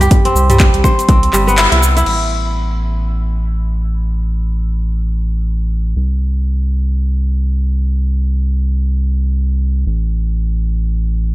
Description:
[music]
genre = afro house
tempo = free time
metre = none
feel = none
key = unclear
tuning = A4 = 441 Hz
[part]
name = kora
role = arpeggios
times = 0.0-3.5 s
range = G3 to C5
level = -16 LUFS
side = equal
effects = sidechain pumping, dub echo
[part]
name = round analog bass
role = bass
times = 0.0-11.3 s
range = G1 to C2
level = -15 LUFS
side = equal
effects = sidechain pumping
[part]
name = afro-pop drum kit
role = drums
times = 0.0-2.2 s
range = crash cymbal, finger snaps, handclaps, hi-hat, shaker, toms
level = -17 LUFS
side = equal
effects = overdrive
[part]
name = electronic kick drum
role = drums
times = 0.1-1.2 s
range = none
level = -11 LUFS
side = equal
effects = none
[sound]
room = digital ambience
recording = none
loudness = -13 LUFS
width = side -18 dB against mid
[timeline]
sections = 0.0-2.1 A section; 2.1-11.3 B section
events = kick drops out 1.6-2.1; band accent 1.6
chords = 0.0 C; 2.1 N.C.

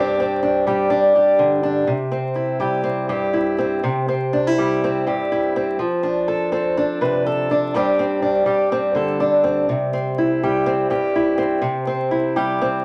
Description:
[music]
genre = highlife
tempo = 123 BPM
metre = 4/4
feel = straight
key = C major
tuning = A4 = 440 Hz
[part]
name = fingerpicked old ladder-braced acoustic guitar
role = solo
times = 0.0-12.8 s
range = G2 to B4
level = -20 LUFS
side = equal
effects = none
[sound]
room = moderate studio reverb, RT60 0.6 s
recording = vinyl crackle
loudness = -20 LUFS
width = mono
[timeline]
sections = 0.0-1.9 A section; 1.9-12.8 B section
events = none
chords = 0.0 Gsus4; 1.9 C; 5.8 F6; 7.7 Gsus4; 9.7 C

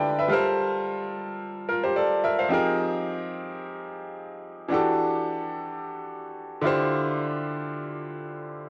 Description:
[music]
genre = amapiano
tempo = 109 BPM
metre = 4/4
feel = swing 55% on 16ths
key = E phrygian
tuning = A4 = 444 Hz
[part]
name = bright baby grand piano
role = solo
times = 0.0-8.7 s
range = D3 to A5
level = -27 LUFS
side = equal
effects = cassette tape
[sound]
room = moderate booth ambience, RT60 0.3 s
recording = home recording on cassette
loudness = -27 LUFS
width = mono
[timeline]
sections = 0.0-8.7 A section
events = none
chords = 0.3 Gm11; 2.5 Fm11; 4.7 Em11; 6.6 Dm11

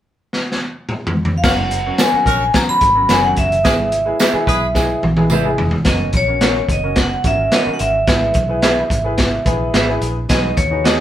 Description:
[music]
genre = uptempo 1960s-style soul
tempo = 108 BPM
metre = 4/4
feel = straight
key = F# mixolydian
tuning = A4 = 440 Hz
[part]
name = crunchy breakbeat drum kit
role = drums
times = 0.3-11.0 s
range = crash cymbal, hi-hat, kick drum, snare drum, toms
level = -17 LUFS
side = equal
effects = none
[part]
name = vibraphone with hard mallets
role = melody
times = 1.4-11.0 s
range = C#5 to B5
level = -17 LUFS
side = equal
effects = none
[part]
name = bright saxophone section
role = second line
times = 1.4-4.7 s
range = C#4 to B4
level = -21 LUFS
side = equal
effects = none
[part]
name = clear concert grand piano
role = accompaniment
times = 1.4-11.0 s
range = F#3 to B4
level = -24 LUFS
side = left 1 dB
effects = none
[part]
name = vintage muted picked electric bass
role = bass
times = 1.4-11.0 s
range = E1 to D#2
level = -23 LUFS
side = equal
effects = none
[part]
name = congas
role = percussion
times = 1.4-11.0 s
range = none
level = -32 LUFS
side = right 1 dB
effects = none
[part]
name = tambourine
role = percussion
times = 1.4-5.4 s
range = none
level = -30 LUFS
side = right 5 dB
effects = none
[part]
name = electric guitar through a small old amp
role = stabs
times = 2.0-11.0 s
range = F#4 to F#5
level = -22 LUFS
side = right 2 dB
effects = none
[sound]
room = moderate studio reverb, RT60 0.8 s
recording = band playing live in one room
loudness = -13 LUFS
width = side -11 dB against mid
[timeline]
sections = 0.0-1.4 A section; 1.4-5.9 B section; 5.9-11.0 C section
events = drum fill 0.3-1.4, 4.8-5.9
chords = 0.0 N.C.; 1.4 F#; 3.6 E/G#; 5.9 F#; 8.1 E/G#; 10.3 B6

